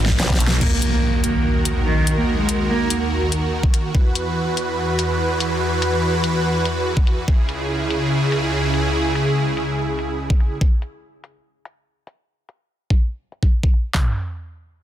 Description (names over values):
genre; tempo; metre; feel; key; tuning
heavy wobble dubstep; 144 BPM; 4/4; half-time; Eb phrygian; A4 = 440 Hz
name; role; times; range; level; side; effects
supersaw chords; sustained chords; 0.0-10.6 s; Db2 to Cb5; -20 LUFS; equal; sidechain pumping, low-pass filter
snarling distorted saw bass; bass; 0.0-0.6 s; Ab1 to Cb2; -20 LUFS; equal; distortion, overdrive
dubstep drum kit; drums; 0.1-0.7, 3.6-4.0, 7.0-7.4, 10.3-14.0 s; handclaps, kick drum, toms; -17 LUFS; equal; overdrive
dubstep drum kit; drums; 0.1-13.8 s; crash cymbal, hi-hat, ride cymbal, snare drum; -24 LUFS; left 2 dB; overdrive, low-pass filter on cymbals, low-pass filter on hats, low-pass filter on snare
dark cello; melody; 0.6-2.9 s; Eb3 to Bb3; -22 LUFS; right 2 dB; ping-pong delay
impact; sound effects; 0.6-2.3 s; none; -22 LUFS; equal; none
room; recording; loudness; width
light reverb; dense, heavily limited modern master; -17 LUFS; side -11 dB against mid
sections
0.6-13.9 A section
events
drum fill 0.0-0.6; impact 0.6-2.3; filter sweep on drum 0.6-13.9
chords
0.0 Abm7; 0.6 Ebm; 3.9 Esus2; 7.3 Dbm; 10.6 N.C.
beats
0.20 | 0.61 1.03 1.45 1.86 | 2.28 2.70 3.11 3.53 | 3.95 4.36 4.78 5.20 | 5.61 6.03 6.45 6.86 | 7.28 7.70 8.11 8.53 | 8.95 9.36 9.78 10.20 | 10.61 11.03 11.45 11.86 | 12.28 12.70 13.11 13.53 | 13.95